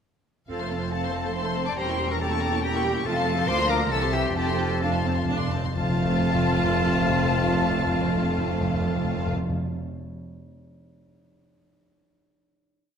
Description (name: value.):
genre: quick classical-period movement for symphony orchestra.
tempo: 126-144 BPM.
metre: 3/4.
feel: rubato.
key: F major.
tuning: A4 = 439 Hz.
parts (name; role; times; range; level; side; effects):
rich chamber violin section; melody; 0.5-9.3 s; A5 to E6; -34 LUFS; left 6 dB; none.
bright clarinet; second line; 0.5-9.3 s; F4 to D5; -31 LUFS; equal; none.
warm studio violin section; second line; 0.5-9.3 s; F5 to D6; -32 LUFS; left 4 dB; none.
rich chamber viola section; accompaniment; 0.5-9.3 s; D3 to C5; -31 LUFS; right 2 dB; none.
warm French horn section; sustained chords; 0.5-9.3 s; E3 to C#4; -32 LUFS; left 5 dB; none.
rich chamber double bass section; bass; 0.5-9.3 s; E1 to D2; -30 LUFS; right 4 dB; none.
rich studio cello section; bass; 0.5-9.3 s; C2 to F2; -30 LUFS; right 4 dB; none.
timpani; percussion; 0.5-9.6 s; F2; -30 LUFS; left 1 dB; none.
flute section; second line; 0.9-9.3 s; E5 to A5; -33 LUFS; left 2 dB; none.
room: wet scoring stage reverb, RT60 1.5 s.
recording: minimal, uncompressed stereo recording.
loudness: -22 LUFS.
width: side -7 dB against mid.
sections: 0.5-5.8 A section; 5.8-8.5 final chord.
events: slowing down 2.4-5.8; timpani fill 4.4-5.8.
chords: 0.5 F; 1.8 Edim7; 3.1 F; 3.5 Bb/D; 3.9 C; 4.4 F.